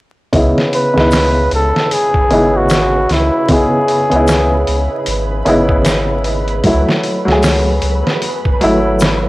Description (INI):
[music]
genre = trip hop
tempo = 76 BPM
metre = 4/4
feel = swing 59% on 16ths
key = C# minor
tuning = A4 = 440 Hz
[part]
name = dark upright piano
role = accompaniment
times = 0.3-9.3 s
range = C#3 to G#4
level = -14 LUFS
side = equal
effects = harmonic tremolo, vintage 12-bit sampler grit, low-pass filter, tape echo
[part]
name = warm sub bass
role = bass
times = 0.3-9.3 s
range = G#1 to C#2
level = -18 LUFS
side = equal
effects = tube saturation
[part]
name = trip hop sampler-style drum kit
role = drums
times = 0.3-9.2 s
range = hi-hat, kick drum, snare drum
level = -17 LUFS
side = equal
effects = none
[part]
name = flickering grainy texture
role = texture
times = 0.7-9.3 s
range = B4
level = -25 LUFS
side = right 2 dB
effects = built-in reverb
[part]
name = trumpet with bucket mute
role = melody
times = 0.8-5.1 s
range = E4 to B4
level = -16 LUFS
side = equal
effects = tape echo
[part]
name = tube shaker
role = percussion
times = 1.1-9.2 s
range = none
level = -31 LUFS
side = left 3 dB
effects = none
[sound]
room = small room ambience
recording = dry, gritty hardware recording, vinyl crackle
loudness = -11 LUFS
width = side -19 dB against mid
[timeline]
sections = 0.3-9.3 A section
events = filter sweep on upright piano 0.3-9.3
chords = 0.3 C#m9; 6.6 F#m9